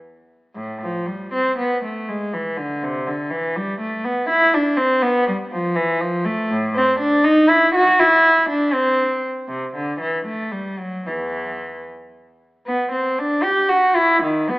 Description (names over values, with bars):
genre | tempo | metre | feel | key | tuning
classical, baroque-style suite movement for unaccompanied cello | 68-83 BPM (dotted quarters) | 6/8 | rubato | A minor, E minor from 6.5 s | A4 = 438 Hz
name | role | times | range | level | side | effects
dark cello | solo | 0.5-14.6 s | E2 to G4 | -17 LUFS | equal | none
room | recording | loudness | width
moderate recital hall reverb, RT60 1.7 s | AM radio sound | -17 LUFS | side -21 dB against mid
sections
0.5-12.7 A section; 12.7-14.6 B section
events
none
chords
none